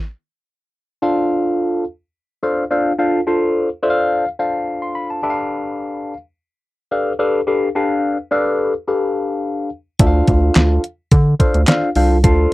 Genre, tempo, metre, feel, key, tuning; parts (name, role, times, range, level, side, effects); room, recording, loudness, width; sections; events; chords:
early-eighties boogie funk; 107 BPM; 4/4; straight; D dorian; A4 = 440 Hz
barky tine electric piano; accompaniment; 1.0-12.5 s; D4 to C6; -17 LUFS; left 1 dB; overdrive, phaser
rubbery square bass; bass; 10.0-12.5 s; C2 to D3; -14 LUFS; equal
detuned 8-bit digital drum machine; drums; 10.0-12.4 s; handclaps, hi-hat, kick drum, snare drum; -15 LUFS; equal; overdrive
little or no reverb; dry, close 1970s-style studio recording; -15 LUFS; side -18 dB against mid
0.0-1.0 A section; 1.0-12.5 B section
stop 0.0-1.0
0.0 N.C.; 1.0 Dm7; 5.2 G9; 10.0 Dm7